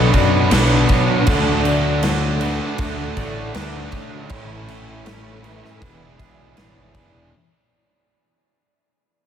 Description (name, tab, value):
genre	rock, shoegaze and dream pop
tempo	79 BPM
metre	4/4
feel	straight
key	E mixolydian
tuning	A4 = 439 Hz
part	ensemble organ-string	sustained chords	0.0-7.3 s	D4 to E6	-29 LUFS	left 3 dB	phaser, ensemble chorus
part	electric guitar through a small old amp	arpeggios	0.0-7.3 s	A4 to E5	-28 LUFS	equal	lush chorus, digital delay
part	biting overdriven guitar	riff	0.0-7.3 s	A2 to G#4	-24 LUFS	right 10 dB	reverse reverb
part	distorted electric guitar	riff	0.0-7.3 s	A2 to E4	-26 LUFS	equal	distortion
part	thick fuzz guitar	riff	0.0-7.3 s	E2 to D4	-24 LUFS	left 7 dB	distortion, wide subtle chorus
part	fuzz picked electric bass	bass	0.0-7.3 s	E1 to F#2	-22 LUFS	equal	overdrive
part	big rock drum kit	drums	0.1-7.1 s	crash cymbal, kick drum, snare drum	-22 LUFS	equal	none
room	light reverb, studio ambience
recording	none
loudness	-15 LUFS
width	side -9 dB against mid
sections	0.0-7.3 A section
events	fade-out 0.0-7.3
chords	0.0 Bm9; 1.3 Dmaj7; 4.3 Amaj7; 5.8 E7(no3)